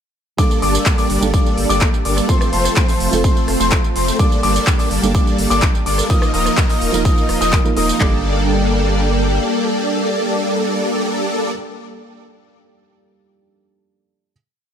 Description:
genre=EDM, festival progressive house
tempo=126 BPM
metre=4/4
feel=straight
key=G minor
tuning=A4 = 440 Hz
part: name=felt-muted upright piano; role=accompaniment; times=0.4-14.3 s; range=F3 to Bb4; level=-24 LUFS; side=right 5 dB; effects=sidechain pumping, ping-pong delay
part: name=lush unison pad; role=sustained chords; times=0.4-11.5 s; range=Bb3 to Bb5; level=-26 LUFS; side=equal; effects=chorus, sidechain pumping
part: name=dark concert grand piano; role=arpeggios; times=0.4-11.5 s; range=C6 to Eb6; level=-23 LUFS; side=left 4 dB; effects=sidechain pumping, ping-pong delay
part: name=supersaw chords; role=riff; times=0.4-11.5 s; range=F3 to Eb5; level=-20 LUFS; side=equal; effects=ensemble chorus, sidechain pumping, ping-pong delay
part: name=big-room dance drum kit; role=drums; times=0.4-8.1 s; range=handclaps, kick drum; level=-16 LUFS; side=equal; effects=none
part: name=big-room dance drum kit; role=drums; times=0.4-8.0 s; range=handclaps, hi-hat, rim click, tambourine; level=-22 LUFS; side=right 1 dB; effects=none
part: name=saturated sub bass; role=bass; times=0.6-9.4 s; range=Eb1 to G1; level=-21 LUFS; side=equal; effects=sidechain pumping
room=light reverb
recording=none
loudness=-14 LUFS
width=side -8 dB against mid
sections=0.4-8.0 drop; 8.0-11.8 final chord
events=drop 0.4-8.0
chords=0.4 Gmadd9; 2.3 F; 4.2 Gmadd9; 6.1 Ebsus2; 8.0 Gmadd9

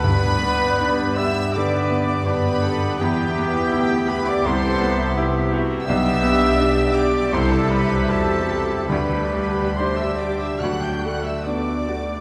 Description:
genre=classical, romantic movement for piano and orchestra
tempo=81 BPM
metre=4/4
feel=uneven beats, rubato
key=G major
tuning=A4 = 441 Hz
part: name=bright baby grand piano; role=melody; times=0.0-12.2 s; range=B1 to G4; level=-26 LUFS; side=equal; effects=none
part: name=clear studio violin section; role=melody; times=0.0-12.2 s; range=G5 to G6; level=-32 LUFS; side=equal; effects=none
part: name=bright clarinet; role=second line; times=0.0-11.9 s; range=F#4 to G4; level=-34 LUFS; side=equal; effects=none
part: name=warm oboe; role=second line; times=0.0-12.2 s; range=G4 to G5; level=-34 LUFS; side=equal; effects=none
part: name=warm studio violin section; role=second line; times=0.0-12.2 s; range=G4 to G5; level=-34 LUFS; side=equal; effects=none
part: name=warm bassoon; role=accompaniment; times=0.0-11.9 s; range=B3 to D4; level=-33 LUFS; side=equal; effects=none
part: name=warm studio viola section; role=accompaniment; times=0.0-12.0 s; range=G3 to G4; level=-32 LUFS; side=equal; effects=none
part: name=warm trumpet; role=stabs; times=0.0-12.2 s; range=G4 to G5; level=-31 LUFS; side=equal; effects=none
part: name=rich symphonic double bass section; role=bass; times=0.0-12.0 s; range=B1 to G2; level=-29 LUFS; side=equal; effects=none
part: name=timpani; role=percussion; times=0.0-1.1, 8.9-11.8 s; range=G2 to D3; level=-31 LUFS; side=equal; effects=none
part: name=hollow flute section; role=second line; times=0.1-11.9 s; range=D5 to E5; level=-35 LUFS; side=equal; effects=none
part: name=mellow French horn section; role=sustained chords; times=0.1-12.2 s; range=F#3 to E4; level=-36 LUFS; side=equal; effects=none
part: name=warm studio cello section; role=bass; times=1.5-11.9 s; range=D4 to B4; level=-31 LUFS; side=equal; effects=none
room=wet church reverb, RT60 3.9 s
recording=recorded in a church or concert hall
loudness=-20 LUFS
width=mono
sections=0.0-12.2 A section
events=none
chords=0.0 G; 3.0 Em; 4.5 Cmaj7; 5.9 G/B; 7.3 C; 8.9 G/D; 10.6 D

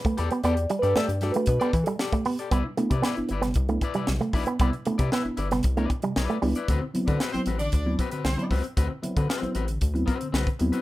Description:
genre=funk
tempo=115 BPM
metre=4/4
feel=straight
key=unclear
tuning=A4 = 440 Hz
part: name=electric guitar at the edge of break-up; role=accompaniment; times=0.0-10.8 s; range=C4 to E5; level=-33 LUFS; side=left 6 dB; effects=none
part: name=mellow reed electric piano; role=stabs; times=0.0-10.8 s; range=C3 to D5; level=-29 LUFS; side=equal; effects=phaser
part: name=crisp fusion drum kit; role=drums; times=0.0-10.8 s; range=hi-hat, kick drum, snare drum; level=-28 LUFS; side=equal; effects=none
part: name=electric guitar with an envelope filter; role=riff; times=0.1-6.5 s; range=G3 to B3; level=-27 LUFS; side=right 3 dB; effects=none
part: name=rubbery square bass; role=bass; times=0.1-10.7 s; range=G1 to E3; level=-27 LUFS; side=equal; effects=none
part: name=clear horn section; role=second line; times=7.1-8.5 s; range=C4 to D5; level=-34 LUFS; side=equal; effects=none
room=moderate small room ambience, RT60 0.5 s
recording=rough home demo mix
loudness=-23 LUFS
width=side -16 dB against mid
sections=0.0-2.5 A section; 2.5-10.8 B section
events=reed electric piano solo 0.0-2.5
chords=0.0 Em11; 2.5 Cmaj9; 6.7 D13

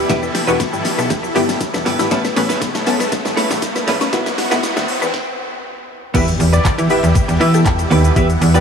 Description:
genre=dance-pop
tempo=119 BPM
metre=4/4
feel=straight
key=E dorian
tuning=A4 = 440 Hz
part: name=supersaw chords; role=sustained chords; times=0.0-8.6 s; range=B2 to F#5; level=-22 LUFS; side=equal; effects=phaser, sidechain pumping
part: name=mallet-like synth pluck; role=arpeggios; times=0.0-5.1 s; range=F#3 to E5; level=-26 LUFS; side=left 6 dB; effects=chorus, sidechain pumping, tape echo
part: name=direct-recorded clean electric guitar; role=riff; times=0.0-8.6 s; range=A3 to B4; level=-24 LUFS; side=right 4 dB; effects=wide subtle chorus
part: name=slap-like FM bass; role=bass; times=0.0-8.6 s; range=E1 to E3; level=-17 LUFS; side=equal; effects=sidechain pumping
part: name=riser and impact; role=sound effects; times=1.2-8.2 s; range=none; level=-26 LUFS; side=equal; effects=none
part: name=punchy chord stab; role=accompaniment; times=0.1-8.6 s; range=B3 to B4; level=-22 LUFS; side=left 2 dB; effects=chorus, sidechain pumping
part: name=pop drum kit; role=drums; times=0.1-8.6 s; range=crash cymbal, handclaps, hi-hat, kick drum, shaker, snare drum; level=-20 LUFS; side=left 1 dB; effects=none
part: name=octave-doubled lead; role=melody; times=6.1-8.6 s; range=D5 to E5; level=-22 LUFS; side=left 1 dB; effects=chorus, sidechain pumping, tape echo
room=moderate huge ambient reverb, RT60 3.9 s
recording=dreamy mix soaked in reverb, high-pass filter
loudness=-14 LUFS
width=side -6 dB against mid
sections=0.0-6.1 A section; 6.1-8.6 B section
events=build-up 0.0-6.1; drum fill 0.0-5.1; riser 1.2-6.1; stop 5.1-6.1; drop 6.1-8.6; impact 6.1-8.2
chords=0.0 Em; 2.1 Aadd9; 4.1 Bsus4; 6.1 Em

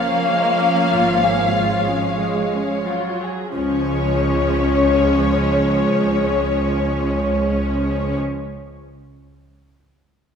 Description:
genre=classical, slow romantic movement for string orchestra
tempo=47 BPM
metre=4/4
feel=rubato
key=Db major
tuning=A4 = 440 Hz
part: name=muted symphonic violin section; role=melody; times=0.0-8.2 s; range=Db5 to F5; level=-21 LUFS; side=left 4 dB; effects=none
part: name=muted symphonic violin section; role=second line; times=0.0-8.2 s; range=Ab3 to Db5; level=-24 LUFS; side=left 3 dB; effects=none
part: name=muted symphonic viola section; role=accompaniment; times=0.0-8.2 s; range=F3 to Bb3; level=-23 LUFS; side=right 3 dB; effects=none
part: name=muted symphonic cello section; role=bass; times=0.0-8.2 s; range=F3 to Db4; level=-26 LUFS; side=right 2 dB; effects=none
part: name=muted symphonic double bass section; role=bass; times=0.9-8.2 s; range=Ab1 to Db2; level=-24 LUFS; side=right 2 dB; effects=none
room=wet concert hall reverb, RT60 2.0 s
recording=minimal, uncompressed stereo recording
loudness=-16 LUFS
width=side -7 dB against mid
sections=0.0-3.5 A section; 3.5-8.6 B section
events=slowing down 0.0-3.5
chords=0.0 Db

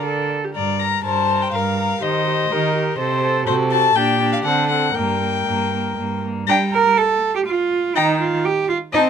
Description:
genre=quick classical-period movement for string quartet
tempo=122 BPM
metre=3/4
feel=straight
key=G minor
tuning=A4 = 439 Hz
part: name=rich violin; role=melody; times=0.0-9.1 s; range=C5 to Bb5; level=-21 LUFS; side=left 8 dB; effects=none
part: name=dark violin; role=second line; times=0.0-9.1 s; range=G4 to G5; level=-22 LUFS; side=left 2 dB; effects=none
part: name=warm viola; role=accompaniment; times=0.0-9.1 s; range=Eb3 to Bb4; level=-24 LUFS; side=right 2 dB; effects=none
part: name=rich cello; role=bass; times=0.0-9.0 s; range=G2 to Bb4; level=-20 LUFS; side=right 6 dB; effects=none
room=light reverb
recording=close, detailed microphones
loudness=-16 LUFS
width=side -7 dB against mid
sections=0.0-6.5 A section; 6.5-9.1 B section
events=none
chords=0.1 D5; 0.6 Gm; 2.0 Eb; 3.0 Adim/C; 3.5 F#dim/C; 4.0 Gm/Bb; 4.4 D7; 5.0 Gm; 8.0 Eb

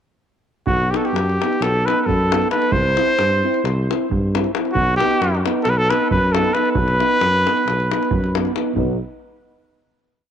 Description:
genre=balkan folk, Balkan brass band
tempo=268 BPM (eighths)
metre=9/8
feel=straight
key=B phrygian dominant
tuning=A4 = 440 Hz
part: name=warm trumpet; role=melody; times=0.7-8.3 s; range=F#4 to C5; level=-19 LUFS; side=equal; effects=tape echo
part: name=mellow tuba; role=bass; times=0.7-9.0 s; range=B1 to G2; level=-21 LUFS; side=equal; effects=none
part: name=davul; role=percussion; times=0.7-9.0 s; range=none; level=-25 LUFS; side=left 1 dB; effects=none
part: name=dark euphonium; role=accompaniment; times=0.9-9.0 s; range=B3 to C4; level=-26 LUFS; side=right 14 dB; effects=none
part: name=warm euphonium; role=accompaniment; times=0.9-9.0 s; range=D#4 to E4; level=-26 LUFS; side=left 12 dB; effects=none
room=moderate spring reverb, RT60 1.7 s, small room ambience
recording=1960s-style stereo with parts hard left and right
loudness=-16 LUFS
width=side -9 dB against mid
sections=0.7-8.8 A section; 8.8-10.3 final chord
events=none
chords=0.7 B; 2.7 C; 4.7 B

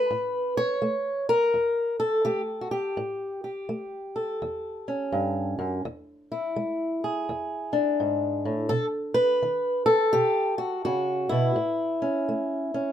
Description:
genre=acoustic country blues, solo or duo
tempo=84 BPM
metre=4/4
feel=swing 64% on 8ths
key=unclear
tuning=A4 = 441 Hz
part: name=fingerpicked old ladder-braced acoustic guitar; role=solo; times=0.0-12.9 s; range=E2 to C#5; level=-24 LUFS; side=equal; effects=none
room=moderate studio reverb, RT60 0.5 s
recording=minimal, uncompressed stereo recording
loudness=-24 LUFS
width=side -10 dB against mid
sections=0.0-12.9 A section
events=none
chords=0.0 A7; 5.8 E7; 8.7 B7; 11.6 A

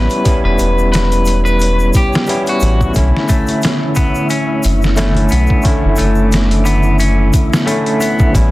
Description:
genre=trip hop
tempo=89 BPM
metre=4/4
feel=swing 55% on 16ths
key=B minor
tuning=A4 = 440 Hz
part: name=electric guitar at the edge of break-up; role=melody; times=0.0-2.9 s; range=F#4 to B4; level=-19 LUFS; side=left 1 dB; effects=spring reverb, tape echo
part: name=overdriven tine electric piano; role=accompaniment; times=0.0-8.5 s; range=D3 to E4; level=-17 LUFS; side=equal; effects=tremolo
part: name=soft dub sub bass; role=bass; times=0.0-8.5 s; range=E1 to B1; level=-14 LUFS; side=equal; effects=none
part: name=wind-like tuned noise texture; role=texture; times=0.0-8.5 s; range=C#5 to E5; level=-30 LUFS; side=left 1 dB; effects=built-in reverb
part: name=trip hop sampler-style drum kit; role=drums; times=0.1-8.5 s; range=hi-hat, kick drum, snare drum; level=-15 LUFS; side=equal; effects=none
part: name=tube shaker and congas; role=percussion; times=0.1-8.5 s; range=none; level=-28 LUFS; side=right 1 dB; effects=none
part: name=string machine, cellos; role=sustained chords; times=3.0-8.5 s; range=D3 to D6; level=-21 LUFS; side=equal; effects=ensemble chorus
part: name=semi-hollow electric guitar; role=arpeggios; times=3.3-8.3 s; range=A3 to C#4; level=-21 LUFS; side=left 1 dB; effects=vintage 12-bit sampler grit, tape echo
room=digital ambience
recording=dense, heavily limited modern master, vinyl crackle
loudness=-11 LUFS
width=side -18 dB against mid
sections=0.0-8.5 A section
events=none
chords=0.0 A7 (rootless); 3.0 Bm11

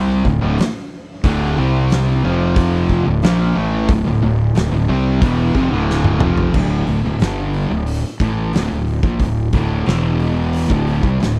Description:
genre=stoner and doom metal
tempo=90 BPM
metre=4/4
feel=straight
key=D minor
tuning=A4 = 440 Hz
part: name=distorted electric guitar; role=riff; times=0.0-6.5 s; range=D2 to C4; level=-26 LUFS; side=equal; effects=overdrive
part: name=fuzz guitar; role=riff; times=0.0-11.4 s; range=D2 to C4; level=-24 LUFS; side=equal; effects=distortion
part: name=thick fuzz guitar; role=riff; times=0.0-11.4 s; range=D2 to C4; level=-22 LUFS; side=equal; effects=distortion
part: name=fuzz fingered electric bass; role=bass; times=0.0-11.4 s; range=D1 to C2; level=-23 LUFS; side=equal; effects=overdrive
part: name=oversized low-tuned drum kit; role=drums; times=0.2-11.4 s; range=crash cymbal, hi-hat, kick drum, snare drum, toms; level=-24 LUFS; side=equal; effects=none
room=little or no reverb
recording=none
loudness=-17 LUFS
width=mono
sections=0.0-6.6 A section; 6.6-11.4 B section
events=drum fill 5.9-6.6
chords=0.3 D5; 1.6 C5; 2.2 F5; 3.1 Dm; 6.6 D5; 9.9 E5; 10.7 D5

